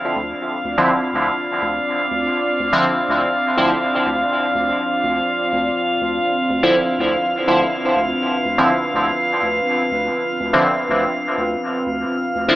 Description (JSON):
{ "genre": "dub techno", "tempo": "123 BPM", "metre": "4/4", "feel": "straight", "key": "D dorian", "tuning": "A4 = 440 Hz", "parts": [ { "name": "deep dark ambient pad", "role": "sustained chords", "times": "0.0-12.6 s", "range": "C4 to D5", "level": "-23 LUFS", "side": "equal", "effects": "chorus, built-in reverb" }, { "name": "drifting glass-harmonics texture", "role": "texture", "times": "0.0-12.6 s", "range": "F5", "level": "-21 LUFS", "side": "equal", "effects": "chorus, built-in reverb" }, { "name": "round analog bass", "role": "bass", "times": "0.2-12.5 s", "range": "D2", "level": "-30 LUFS", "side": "equal", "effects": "none" }, { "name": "resonant sweep polysynth", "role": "stabs", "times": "0.8-12.6 s", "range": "D3 to E4", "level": "-19 LUFS", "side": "equal", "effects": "chorus, phaser, dub echo" } ], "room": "wet spring reverb, RT60 1.3 s", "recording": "echo-heavy mix, AM radio sound", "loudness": "-16 LUFS", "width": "side -16 dB against mid", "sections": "0.0-12.6 A section", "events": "none", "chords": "0.0 Dm7" }